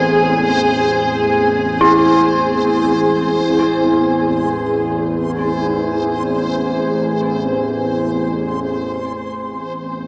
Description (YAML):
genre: dark ambient drone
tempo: free time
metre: none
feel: none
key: A harmonic minor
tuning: A4 = 439 Hz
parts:
  - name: granular cloud pad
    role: sustained chords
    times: 0.0-9.1 s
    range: C4 to G#4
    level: -21 LUFS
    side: equal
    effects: built-in reverb
  - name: analog drone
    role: drone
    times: 0.0-10.1 s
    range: A1 to E2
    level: -23 LUFS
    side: equal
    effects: chorus
  - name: backwards swelling texture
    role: texture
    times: 0.0-9.1 s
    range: C5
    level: -27 LUFS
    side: equal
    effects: built-in reverb
  - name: dark detuned synth bell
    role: arpeggios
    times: 1.8-9.1 s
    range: E4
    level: -20 LUFS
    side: equal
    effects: chorus, phaser, diffuse ambient delay
room: wet huge ambient reverb, RT60 8.5 s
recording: small speaker sound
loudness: -17 LUFS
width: mono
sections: 0.0-9.1 A section; 9.1-10.1 B section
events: none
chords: 0.0 Ammaj7; 9.1 A5